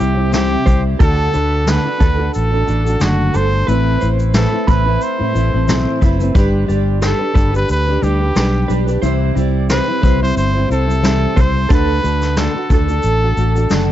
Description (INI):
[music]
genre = acoustic pop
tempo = 90 BPM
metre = 4/4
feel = swing 55% on 16ths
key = unclear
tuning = A4 = 440 Hz
[part]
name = bright trumpet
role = melody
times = 0.0-13.8 s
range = F#4 to C5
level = -21 LUFS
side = equal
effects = plate reverb, digital delay
[part]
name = fingerpicked plugged-in steel-string acoustic guitar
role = accompaniment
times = 0.0-13.9 s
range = A2 to C5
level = -19 LUFS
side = left 1 dB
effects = double-tracked left and right
[part]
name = sustaining fretless electric bass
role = bass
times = 0.0-13.9 s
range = F#1 to A2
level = -16 LUFS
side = equal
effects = wide subtle chorus
[part]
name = vintage brush drum kit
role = drums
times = 0.0-13.9 s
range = kick drum, shaker, snare drum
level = -16 LUFS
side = equal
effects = none
[part]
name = mellow electric guitar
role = arpeggios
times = 0.7-13.3 s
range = A4 to B5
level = -26 LUFS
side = right 7 dB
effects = tremolo, plate reverb
[sound]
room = little or no reverb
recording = dark, warm production, nothing above 7.7 kHz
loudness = -13 LUFS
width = side -12 dB against mid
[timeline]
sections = 0.0-13.9 A section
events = none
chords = 0.0 C; 1.0 D; 3.7 Amadd9; 6.4 G; 9.0 C; 11.7 D